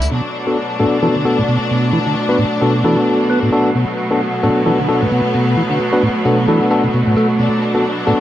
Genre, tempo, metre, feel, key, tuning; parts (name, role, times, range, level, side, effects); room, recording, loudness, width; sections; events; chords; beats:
breakbeat, breaks; 132 BPM; 4/4; swing 57% on 16ths; B minor; A4 = 439 Hz
clear symphonic string section; sustained chords; 0.0-8.2 s; B2 to E4; -17 LUFS; equal
tambourine; drums; 0.0-8.2 s; -39 LUFS; equal
percussive tonewheel organ; riff; 0.1-8.1 s; A2 to B3; -19 LUFS; equal; slow rotary speaker, low-pass filter, analog delay
bright tine electric piano; stabs; 0.5-8.2 s; B3 to B4; -17 LUFS; left 1 dB; low-pass filter, analog delay
light reverb, digital ambience; dry, gritty hardware recording, nothing above 11.0 kHz; -13 LUFS; side -12 dB against mid
0.1-8.2 A section
filter sweep on tine electric piano 0.1-8.2
0.1 Bm7
| 0.12 0.57 1.02 1.48 | 1.93 2.39 2.84 3.30 | 3.75 4.21 4.66 5.12 | 5.57 6.03 6.48 6.93 | 7.39 7.84